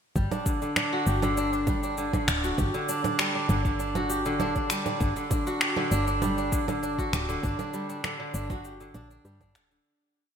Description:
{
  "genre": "organic downtempo",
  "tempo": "99 BPM",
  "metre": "4/4",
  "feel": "straight",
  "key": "unclear",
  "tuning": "A4 = 440 Hz",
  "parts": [
    { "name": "kora", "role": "arpeggios", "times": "0.2-10.4 s", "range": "D3 to G4", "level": "-28 LUFS", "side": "equal", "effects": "ping-pong delay" },
    { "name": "woody FM bass", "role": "bass", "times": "0.2-9.8 s", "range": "D1 to G2", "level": "-31 LUFS", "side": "equal", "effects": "none" },
    { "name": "electronic cabasa, congas and finger snaps", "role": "drums", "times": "0.2-9.8 s", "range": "none", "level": "-30 LUFS", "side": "right 2 dB", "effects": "studio reverb, gated reverb" },
    { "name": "electronic kick drum", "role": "drums", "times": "0.2-9.5 s", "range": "none", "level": "-30 LUFS", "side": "equal", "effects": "studio reverb" }
  ],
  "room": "moderate plate reverb, RT60 2.6 s",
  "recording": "bright 1980s-style digital production",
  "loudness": "-25 LUFS",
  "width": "side -8 dB against mid",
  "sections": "0.2-9.9 groove",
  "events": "fade-out 6.6-9.9",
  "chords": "0.2 G5"
}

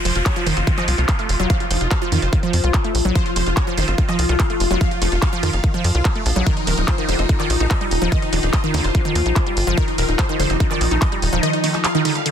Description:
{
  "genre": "psychedelic trance",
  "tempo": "145 BPM",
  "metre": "4/4",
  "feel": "straight",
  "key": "unclear",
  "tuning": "A4 = 440 Hz",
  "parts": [
    { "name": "evolving wavetable pad", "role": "sustained chords", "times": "1.0-12.3 s", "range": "F3 to F4", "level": "-26 LUFS", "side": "left 4 dB", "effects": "phaser, built-in reverb, sidechain pumping" },
    { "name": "downlifter and reverse cymbal", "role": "sound effects", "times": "0.0-3.2, 12.3 s", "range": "none", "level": "-29 LUFS", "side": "equal", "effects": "none" },
    { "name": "supersaw stab", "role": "melody", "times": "0.1-12.3 s", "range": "Eb4 to F5", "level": "-25 LUFS", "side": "equal", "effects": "phaser, vintage 12-bit sampler grit, sidechain pumping, tape echo" },
    { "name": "wide unison pluck", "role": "riff", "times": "0.1-12.3 s", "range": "D3 to Gb4", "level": "-24 LUFS", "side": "moving between left 2 dB and right 4 dB", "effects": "auto-pan, sidechain pumping, tape echo" },
    { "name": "tight sequencer bass", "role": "bass", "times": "0.1-11.4 s", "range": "Eb1 to F2", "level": "-20 LUFS", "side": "equal", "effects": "none" },
    { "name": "drum and bass drum kit", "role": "drums", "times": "0.1-12.3 s", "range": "handclaps, hi-hat", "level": "-25 LUFS", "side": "right 1 dB", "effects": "none" },
    { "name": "electronic kick drum", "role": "drums", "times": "0.3-11.1 s", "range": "none", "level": "-19 LUFS", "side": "equal", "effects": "overdrive" },
    { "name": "metallic wobble bass", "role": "second line", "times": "0.6-12.2 s", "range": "F3 to F4", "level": "-36 LUFS", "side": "right 2 dB", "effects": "none" }
  ],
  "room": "digital ambience",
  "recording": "dense, heavily limited modern master",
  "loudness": "-16 LUFS",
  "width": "side -8 dB against mid",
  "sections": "0.0-12.3 A section",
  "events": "none",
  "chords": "0.0 F5; 6.5 Eb5"
}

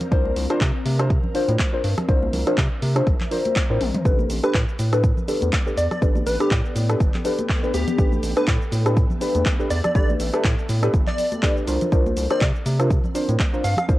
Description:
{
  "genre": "deep house",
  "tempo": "122 BPM",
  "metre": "4/4",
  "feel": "swing 56% on 16ths",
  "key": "unclear",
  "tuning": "A4 = 445 Hz",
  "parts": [
    { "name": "deep house drum kit", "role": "drums", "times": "0.0-14.0 s", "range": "handclaps, hi-hat, rim click, shaker, toms", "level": "-29 LUFS", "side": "equal", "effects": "cassette tape" },
    { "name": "congas", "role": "percussion", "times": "0.0-13.9 s", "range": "none", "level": "-32 LUFS", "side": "equal", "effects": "none" },
    { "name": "ethereal airy pad", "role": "texture", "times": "0.0-14.0 s", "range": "B3 to G5", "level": "-34 LUFS", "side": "left 2 dB", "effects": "ensemble chorus, built-in reverb, phaser, sidechain pumping" },
    { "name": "deep mellow chord stab", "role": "stabs", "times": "0.1-14.0 s", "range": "D4 to C5", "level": "-24 LUFS", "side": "left 1 dB", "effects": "chorus, sidechain pumping, analog delay" },
    { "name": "round analog bass", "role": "bass", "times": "0.1-14.0 s", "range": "G1 to C3", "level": "-23 LUFS", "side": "equal", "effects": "sidechain pumping" },
    { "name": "electronic kick drum", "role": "drums", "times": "0.1-14.0 s", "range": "none", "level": "-21 LUFS", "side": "equal", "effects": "cassette tape" },
    { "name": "plucky unison lead", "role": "melody", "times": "4.4-13.8 s", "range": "G4 to F5", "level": "-26 LUFS", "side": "equal", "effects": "cassette tape, tape echo" }
  ],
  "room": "light reverb, digital ambience",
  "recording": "home recording on cassette",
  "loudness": "-18 LUFS",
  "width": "side -16 dB against mid",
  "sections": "0.0-14.0 A section",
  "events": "drum fill 3.8",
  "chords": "0.0 C9sus4; 4.1 A9sus4; 11.7 C9sus4"
}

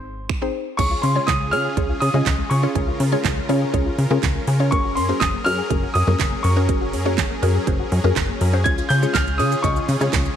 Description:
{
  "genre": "dance-pop",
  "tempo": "122 BPM",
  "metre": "4/4",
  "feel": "straight",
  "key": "unclear",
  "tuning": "A4 = 439 Hz",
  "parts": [
    { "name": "clear concert grand piano", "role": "melody", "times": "0.0-10.4 s", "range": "C5 to Ab6", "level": "-24 LUFS", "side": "equal", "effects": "slapback echo" },
    { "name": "mallet-like synth pluck", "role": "accompaniment", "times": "0.0-10.3 s", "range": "C4 to Eb5", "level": "-26 LUFS", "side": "equal", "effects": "chorus, phaser, sidechain pumping" },
    { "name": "plucky analog bass", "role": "bass", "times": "0.0-10.3 s", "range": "Gb1 to Db3", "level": "-21 LUFS", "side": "equal", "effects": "sidechain pumping" },
    { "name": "pop drum kit", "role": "drums", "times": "0.3-10.4 s", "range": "crash cymbal, finger snaps, handclaps, hi-hat, kick drum, shaker, snare drum", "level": "-24 LUFS", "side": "right 3 dB", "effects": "none" },
    { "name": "supersaw chords", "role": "sustained chords", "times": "0.8-10.4 s", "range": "Db3 to Bb4", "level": "-29 LUFS", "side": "equal", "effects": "sidechain pumping" },
    { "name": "soft round pluck", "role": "arpeggios", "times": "0.8-10.3 s", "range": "Ab3 to Ab5", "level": "-31 LUFS", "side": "left 11 dB", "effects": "chorus, sidechain pumping, slapback echo" },
    { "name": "tambourine", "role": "percussion", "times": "8.8-10.4 s", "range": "none", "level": "-39 LUFS", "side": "right 16 dB", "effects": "none" }
  ],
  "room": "light reverb, digital ambience",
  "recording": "1960s-style stereo with parts hard left and right",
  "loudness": "-17 LUFS",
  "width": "side -9 dB against mid",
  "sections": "0.8-10.4 A section",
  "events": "none",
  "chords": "0.0 Ab; 0.8 Db; 4.7 Gbadd9; 8.7 Db"
}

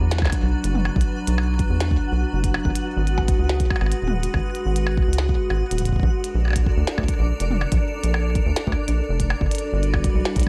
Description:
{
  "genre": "IDM",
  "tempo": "142 BPM",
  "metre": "4/4",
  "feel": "straight",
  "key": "unclear",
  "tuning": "A4 = 440 Hz",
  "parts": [
    { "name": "icy glass pad", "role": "sustained chords", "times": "0.0-10.5 s", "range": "F#3 to B4", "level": "-30 LUFS", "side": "equal", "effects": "chorus, built-in reverb" },
    { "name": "rubbery square bass", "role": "bass", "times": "0.0-10.4 s", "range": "D#1 to E2", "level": "-24 LUFS", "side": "equal", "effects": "tube saturation" },
    { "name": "twinkling granular texture", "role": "texture", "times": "0.0-10.5 s", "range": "D4 to F#5", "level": "-36 LUFS", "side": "equal", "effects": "built-in reverb" },
    { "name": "glitchy drum kit", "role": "drums", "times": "0.1-10.5 s", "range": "hi-hat, percussion blips, snare drum, toms", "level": "-30 LUFS", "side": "equal", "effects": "studio reverb, digital delay" },
    { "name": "electronic kick drum", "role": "drums", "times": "0.2-10.5 s", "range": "none", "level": "-26 LUFS", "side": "equal", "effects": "studio reverb" }
  ],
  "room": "little or no reverb",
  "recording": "none",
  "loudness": "-22 LUFS",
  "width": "mono",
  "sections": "0.0-10.5 A section",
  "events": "none",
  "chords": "0.0 Bm; 2.6 G#m7; 6.0 A#maj7; 9.4 Gmaj7"
}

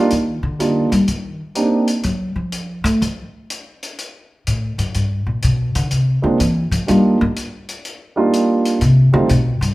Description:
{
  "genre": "jazz piano trio",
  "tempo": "124 BPM",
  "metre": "4/4",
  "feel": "swing 67% on 8ths",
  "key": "unclear",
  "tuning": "A4 = 442 Hz",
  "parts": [
    { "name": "dark grand piano", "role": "melody", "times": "0.0-1.9, 6.2-9.3 s", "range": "G3 to G4", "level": "-16 LUFS", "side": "right 2 dB", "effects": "none" },
    { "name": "upright bass", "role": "bass", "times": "0.1-9.7 s", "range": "F#2 to Bb3", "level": "-16 LUFS", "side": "left 1 dB", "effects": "none" },
    { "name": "hi-hat", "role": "drums", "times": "0.1-9.7 s", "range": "none", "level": "-29 LUFS", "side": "left 2 dB", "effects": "none" }
  ],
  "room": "wet large studio reverb, RT60 1.0 s",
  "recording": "heard from further back in the room",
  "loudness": "-15 LUFS",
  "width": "side -18 dB against mid",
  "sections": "0.0-9.7 A section",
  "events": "upright bass solo 0.0-9.7",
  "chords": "0.0 Ebmaj7; 1.1 Cm7; 2.0 F; 3.0 F#mmaj7; 4.9 Gm; 5.9 Bbadd9 (rootless); 6.9 Ebmaj7; 8.8 Fsus2 (rootless)"
}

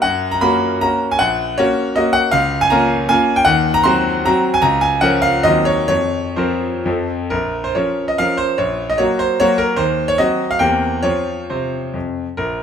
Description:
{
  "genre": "classical, romantic triple-time dance for piano with dotted rhythms",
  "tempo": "119-167 BPM",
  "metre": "3/4",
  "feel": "rubato",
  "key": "Bb minor",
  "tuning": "A4 = 442 Hz",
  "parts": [
    { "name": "bright grand piano", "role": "solo", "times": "0.0-12.6 s", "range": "Bb1 to C6", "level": "-14 LUFS", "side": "equal", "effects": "none" }
  ],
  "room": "moderate recital hall reverb, RT60 1.9 s",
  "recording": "close, detailed microphones",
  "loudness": "-14 LUFS",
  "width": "side -8 dB against mid",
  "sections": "0.0-7.3 A section; 7.3-12.6 B section",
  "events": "none",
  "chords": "0.0 Gb; 1.2 Gb/Bb; 2.3 Bbm/Db; 3.5 Cdim/Eb; 4.6 Bbm/Db; 5.4 Cdim/Eb; 5.9 Fsus4; 6.9 F; 7.3 Bbm; 8.6 Gb/Bb; 9.8 Cdim/Eb; 10.6 C7/E; 11.0 F5"
}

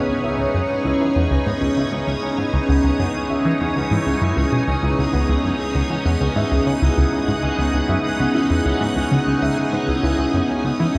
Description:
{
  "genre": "ambient, sequencer-driven space music",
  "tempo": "98 BPM",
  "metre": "4/4",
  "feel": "straight",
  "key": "C# minor",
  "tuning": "A4 = 440 Hz",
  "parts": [
    { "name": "string machine, full ensemble", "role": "sustained chords", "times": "0.0-11.0 s", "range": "C#4 to F#5", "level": "-24 LUFS", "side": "equal", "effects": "ensemble chorus, shimmer reverb" },
    { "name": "concert harp", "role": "arpeggios", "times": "0.0-11.0 s", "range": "B3 to E5", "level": "-28 LUFS", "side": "equal", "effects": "delay" },
    { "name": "bubbling stepped-filter texture", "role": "texture", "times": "0.0-11.0 s", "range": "D#4 to D#6", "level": "-29 LUFS", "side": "equal", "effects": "chorus, built-in reverb, shimmer reverb" },
    { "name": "tight sequenced synth", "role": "riff", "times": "0.1-11.0 s", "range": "C#2 to E3", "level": "-24 LUFS", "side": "equal", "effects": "chorus, phaser, delay" }
  ],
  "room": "wet cathedral reverb, RT60 5.9 s",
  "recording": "in a vast, echoing space",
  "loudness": "-20 LUFS",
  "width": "mono",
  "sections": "0.0-11.0 A section",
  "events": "none",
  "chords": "0.0 C#m7"
}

